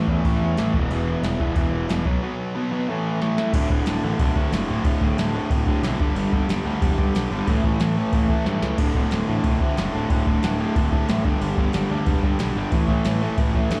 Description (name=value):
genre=punk rock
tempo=183 BPM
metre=4/4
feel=straight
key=D major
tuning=A4 = 440 Hz
part: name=crunchy overdriven guitar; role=riff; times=0.0-13.8 s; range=D2 to B3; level=-28 LUFS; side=equal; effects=slapback echo
part: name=distorted electric guitar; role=riff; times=0.0-13.8 s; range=D2 to B3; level=-29 LUFS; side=equal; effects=overdrive, slapback echo
part: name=fuzz picked electric bass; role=bass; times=0.0-13.8 s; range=D1 to G2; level=-28 LUFS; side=equal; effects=overdrive
part: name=soft vintage rhythm box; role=drums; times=0.1-13.8 s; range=crash cymbal, hi-hat, kick drum, snare drum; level=-25 LUFS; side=equal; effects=none
room=digital ambience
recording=live gig heard through the venue's PA, club reverb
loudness=-22 LUFS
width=mono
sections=0.0-3.5 A section; 3.5-13.8 B section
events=drum fill 3.2-3.5, 8.5-8.8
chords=0.0 A5; 0.7 E5; 2.1 B5; 2.9 A5; 3.5 D5; 6.0 G5; 7.5 A5; 8.8 D5; 11.2 G5; 12.7 A5